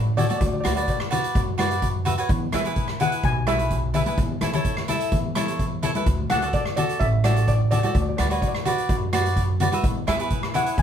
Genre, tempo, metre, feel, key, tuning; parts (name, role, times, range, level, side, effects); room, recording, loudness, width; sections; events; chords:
calypso; 127 BPM; 4/4; straight; A4 = 440 Hz
steel pan; melody; 0.0-10.8 s; D5 to G#5; -27 LUFS; left 1 dB; plate reverb
upright bass; bass; 0.0-10.8 s; A1 to F#2; -25 LUFS; equal
cavaquinho; accompaniment; 0.2-10.8 s; E4 to E5; -26 LUFS; right 2 dB
street-band drum kit; drums; 0.2-10.8 s; hi-hat, kick drum, rim click; -26 LUFS; equal
congas; percussion; 0.2-10.7 s; -29 LUFS; left 4 dB
wet small room reverb, RT60 0.6 s; heard from further back in the room; -20 LUFS; side -8 dB against mid
0.0-10.8 A section
0.4 Bm/D; 2.3 E; 4.2 A/E; 6.1 D; 8.0 Bm/D; 9.8 E